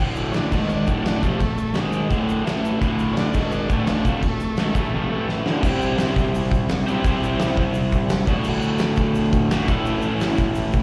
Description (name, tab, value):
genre	garage rock duo or trio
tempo	171 BPM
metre	4/4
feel	straight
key	unclear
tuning	A4 = 440 Hz
part	overdriven semi-hollow guitar	riff	0.0-10.8 s	D2 to C5	-24 LUFS	equal	slapback echo
part	oversized low-tuned drum kit	drums	0.2-10.8 s	crash cymbal, hi-hat, kick drum, snare drum	-25 LUFS	equal	none
part	egg shaker	percussion	0.2-10.8 s	none	-53 LUFS	equal	none
part	overdriven combo organ	melody	0.3-5.3 s	A3 to D4	-31 LUFS	equal	slapback echo
room	light reverb, studio reverb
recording	live gig heard through the venue's PA, cassette tape, recital hall reverb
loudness	-21 LUFS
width	mono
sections	0.0-5.6 A section; 5.6-10.8 B section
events	drum fill 5.3-5.6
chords	0.0 D5; 0.5 G#5; 0.9 D5; 1.8 G#5; 2.1 D5; 2.5 A5; 2.8 D5; 3.3 G#5; 3.7 D5; 5.1 A5; 5.5 D5; 5.6 C; 8.3 D; 9.7 A